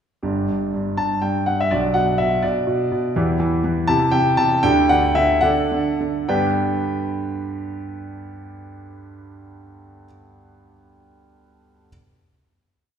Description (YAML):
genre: classical-period piano sonatina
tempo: 68-84 BPM (dotted quarters)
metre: 6/8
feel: rubato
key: G major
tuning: A4 = 440 Hz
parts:
  - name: clear concert grand piano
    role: solo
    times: 0.2-11.9 s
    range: G1 to A5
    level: -18 LUFS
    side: equal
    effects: none
room: wet recital hall reverb, RT60 1.8 s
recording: recorded in a church or concert hall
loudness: -17 LUFS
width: side -8 dB against mid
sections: 0.2-6.3 A section; 6.3-9.7 final chord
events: slowing down 2.4-6.3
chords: 0.2 G5; 1.7 Bm; 3.1 Em; 3.9 C; 4.6 G5/D; 5.4 D; 6.3 G